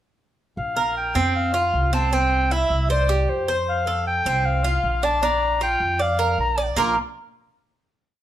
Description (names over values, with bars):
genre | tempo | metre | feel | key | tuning
latin, Cuban son and guajira | 155 BPM | 4/4 | straight | Bb major | A4 = 440 Hz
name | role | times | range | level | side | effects
mellow clarinet | melody | 0.6-7.0 s | C5 to D6 | -23 LUFS | left 1 dB | none
upright bass | bass | 0.6-6.9 s | Bb1 to F2 | -25 LUFS | equal | none
Cuban tres | arpeggios | 0.8-7.0 s | Bb3 to D5 | -23 LUFS | right 3 dB | none
room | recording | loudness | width
light reverb | minimal, uncompressed stereo recording, lossy compression artefacts | -19 LUFS | side -12 dB against mid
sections
0.6-6.8 A section; 6.8-8.2 final chord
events
none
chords
0.6 Bbsus2; 2.1 C; 3.7 F; 5.2 Bb; 6.8 Bb5